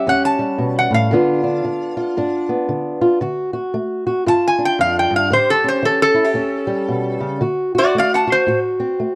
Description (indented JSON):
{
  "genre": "acoustic country blues, solo or duo",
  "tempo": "114 BPM",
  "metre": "4/4",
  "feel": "swing 61% on 8ths",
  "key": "unclear",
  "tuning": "A4 = 440 Hz",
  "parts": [
    { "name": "metal-body resonator slide guitar", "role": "melody", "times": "0.0-8.6 s", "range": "F#4 to A5", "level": "-19 LUFS", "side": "equal", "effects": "plate reverb" },
    { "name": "fingerpicked old ladder-braced acoustic guitar", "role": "accompaniment", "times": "0.0-9.2 s", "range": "E2 to G4", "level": "-21 LUFS", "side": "equal", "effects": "none" }
  ],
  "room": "moderate booth ambience, RT60 0.2 s",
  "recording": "dark, warm production",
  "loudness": "-18 LUFS",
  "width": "mono",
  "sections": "0.0-7.4 A section; 7.4-9.2 B section",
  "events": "resonator guitar played with a steel bar solo 0.0-7.4",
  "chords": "0.0 A7; 1.1 G7; 3.2 D; 4.3 G5; 5.3 A7; 7.4 D7",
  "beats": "0.07 0.59 | 1.11 1.64 2.16 2.69 | 3.21 3.74 4.26 4.79 | 5.31 5.84 6.37 6.89 | 7.42 7.95 8.47 9.00"
}